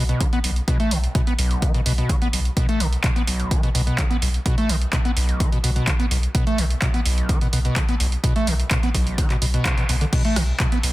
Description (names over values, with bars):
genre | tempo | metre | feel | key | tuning
acid house | 127 BPM | 4/4 | straight | B minor | A4 = 440 Hz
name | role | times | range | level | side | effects
overdriven acid bass | riff | 0.0-10.9 s | B1 to B3 | -24 LUFS | equal | distortion, analog chorus, digital delay
warm sub bass | bass | 0.0-10.9 s | B1 | -22 LUFS | equal | sidechain pumping
punchy analog drum machine | drums | 0.1-10.9 s | crash cymbal, handclaps, hi-hat, rim click | -26 LUFS | right 1 dB | none
electronic kick drum | drums | 0.2-10.7 s | none | -22 LUFS | equal | none
room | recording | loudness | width
light reverb | dense, heavily limited modern master | -18 LUFS | side -17 dB against mid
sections
0.0-10.1 A section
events
band accent 9.7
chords
0.0 N.C.; 10.1 B7(no3)